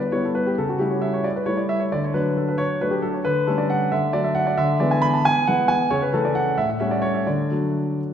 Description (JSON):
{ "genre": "classical-period piano sonatina", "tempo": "90 BPM (dotted quarters)", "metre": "6/8", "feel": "rubato", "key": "D major", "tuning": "A4 = 441 Hz", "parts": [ { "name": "warm concert grand piano", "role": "solo", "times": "0.0-8.1 s", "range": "A2 to B5", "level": "-19 LUFS", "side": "equal", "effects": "none" } ], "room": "wet recital hall reverb, RT60 1.5 s", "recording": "heard from further back in the room, nothing above 10.6 kHz", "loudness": "-19 LUFS", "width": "side -8 dB against mid", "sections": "0.0-8.1 A section", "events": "none", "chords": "0.0 Em; 0.6 A7/C#; 1.9 D; 4.6 E7/D; 5.9 A/C#; 6.6 A7; 7.3 D" }